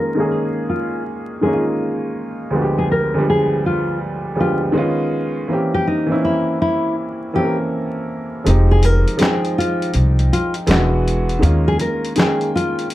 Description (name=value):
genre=lo-fi hip hop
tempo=81 BPM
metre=4/4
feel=swing 65% on 16ths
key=F minor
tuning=A4 = 439 Hz
part: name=nylon-string guitar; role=melody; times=0.0-12.9 s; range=Eb4 to Bb4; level=-20 LUFS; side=left 1 dB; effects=low-pass filter
part: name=warm upright piano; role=accompaniment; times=0.0-12.9 s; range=D2 to G5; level=-19 LUFS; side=equal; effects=low-pass filter
part: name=upright bass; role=bass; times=8.5-11.8 s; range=E1 to Eb2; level=-15 LUFS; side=equal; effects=none
part: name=dusty soul sampler-style drum kit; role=drums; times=8.5-12.9 s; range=handclaps, hi-hat, snare drum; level=-20 LUFS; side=equal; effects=none
room=moderate studio ambience, RT60 0.5 s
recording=dark, warm production, vinyl crackle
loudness=-16 LUFS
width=side -15 dB against mid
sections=0.0-8.5 A section; 8.5-12.9 B section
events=kick muted 8.5-12.9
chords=0.0 Eb9sus4; 2.5 G7b9/D; 4.8 Db9; 5.5 C7b9/E; 8.5 Fm7; 10.7 E9; 11.4 Eb9sus4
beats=0.31 1.05 1.79 | 2.54 3.27 4.02 4.76 | 5.50 6.24 6.98 7.72 | 8.46 9.20 9.94 10.68 | 11.42 12.16 12.90